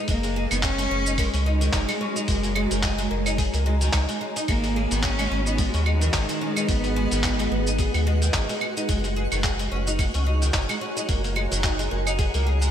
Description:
organic downtempo; 109 BPM; 4/4; swing 56% on 16ths; A4 = 440 Hz
ethereal airy pad; sustained chords; 0.0-12.7 s; G#3 to A#5; -32 LUFS; equal; ensemble chorus, built-in reverb, tremolo, sidechain pumping
oud; arpeggios; 0.0-12.7 s; D#3 to G#4; -30 LUFS; right 1 dB; ping-pong delay, slapback echo
rich cello; melody; 0.1-7.8 s; D#3 to C#4; -29 LUFS; equal; ping-pong delay, slapback echo
round analog bass; bass; 0.1-12.7 s; F#1 to D#2; -25 LUFS; equal
dusty soul sampler-style drum kit; drums; 0.1-12.7 s; claves, handclaps, hi-hat, shaker; -28 LUFS; equal
electronic kick drum; drums; 0.1-12.3 s; -26 LUFS; equal
twinkling granular texture; texture; 5.1-12.7 s; F#4 to F#5; -36 LUFS; equal; built-in reverb
moderate lush hall reverb, RT60 2.6 s; big arena sound; -21 LUFS; side -9 dB against mid
0.0-12.7 A section
0.1 F#add9; 4.5 G#m; 8.9 F#add9

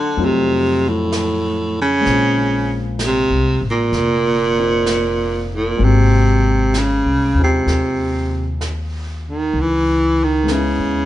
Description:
jazz ballad; 64 BPM; 4/4; swing 69% on 8ths; Ab major; A4 = 440 Hz
clear baritone saxophone; melody; 0.0-11.1 s; A2 to Fb3; -16 LUFS; right 1 dB
warm concert grand piano; accompaniment; 0.0-11.1 s; Gb3 to Ab4; -25 LUFS; left 5 dB
upright bass; bass; 0.2-11.1 s; F1 to F2; -20 LUFS; left 1 dB
jazz brush drum kit; drums; 0.2-11.1 s; brushed snare drum, hi-hat, snare drum; -30 LUFS; right 2 dB
moderate large studio reverb, RT60 1.2 s; band playing live in one room, nothing above 11.0 kHz; -14 LUFS; side -14 dB against mid
0.0-11.1 A section
0.2 F7b9; 2.1 Bbsus2; 5.8 Ab7; 9.6 Dbm9

